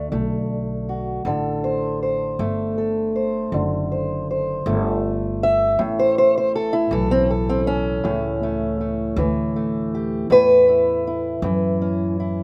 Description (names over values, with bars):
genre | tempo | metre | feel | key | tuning
acoustic country blues, solo or duo | 53 BPM (dotted quarters) | 12/8 | straight | unclear | A4 = 442 Hz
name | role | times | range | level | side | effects
fingerpicked steel-string acoustic guitar | melody | 0.0-12.4 s | A2 to E5 | -22 LUFS | equal | none
upright bass | bass | 0.0-12.4 s | F#1 to F#2 | -28 LUFS | equal | none
room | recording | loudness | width
light reverb | recorded outdoors, with no room sound | -21 LUFS | mono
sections
0.0-12.4 A section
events
steel-string acoustic guitar solo 0.0-12.4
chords
0.0 D7; 5.8 A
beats
0.13 | 1.26 2.39 3.52 4.65 | 5.78 6.91 8.04 9.17 | 10.30 11.43